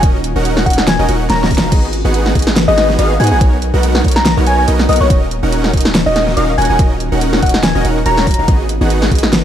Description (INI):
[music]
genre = future bass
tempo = 142 BPM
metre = 4/4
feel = swing 55% on 16ths, half-time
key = Eb minor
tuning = A4 = 440 Hz
[part]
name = ethereal airy pad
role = sustained chords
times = 0.0-9.4 s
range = Eb3 to Cb5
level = -25 LUFS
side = right 1 dB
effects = none
[part]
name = supersaw chords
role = riff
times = 0.0-9.3 s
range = Cb4 to Gb5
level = -18 LUFS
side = right 1 dB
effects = sidechain pumping, digital delay
[part]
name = long sustained 808-style bass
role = bass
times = 0.0-9.4 s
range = Eb1 to Ab2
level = -16 LUFS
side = equal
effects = sidechain pumping
[part]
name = electronic kick drum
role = drums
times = 0.0-9.2 s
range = none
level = -13 LUFS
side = equal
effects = overdrive
[part]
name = pop drum kit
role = drums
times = 0.0-9.4 s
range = crash cymbal, hi-hat, snare drum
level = -16 LUFS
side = equal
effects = overdrive
[part]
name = soft struck synth lead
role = melody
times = 0.7-8.5 s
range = C#5 to Bb5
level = -17 LUFS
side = left 2 dB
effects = chorus, sidechain pumping, ping-pong delay
[sound]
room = light reverb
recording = none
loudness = -10 LUFS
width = side -10 dB against mid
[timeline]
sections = 0.0-9.4 A section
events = drum fill 1.3-1.7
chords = 0.0 Ebm7; 1.7 Abm7; 3.4 Bmaj9; 5.1 Ebm7; 8.5 Abm7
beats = | 0.03 0.45 0.88 1.30 | 1.72 2.14 2.57 2.99 | 3.41 3.83 4.26 4.68 | 5.10 5.52 5.95 6.37 | 6.79 7.21 7.64 8.06 | 8.48 8.90 9.33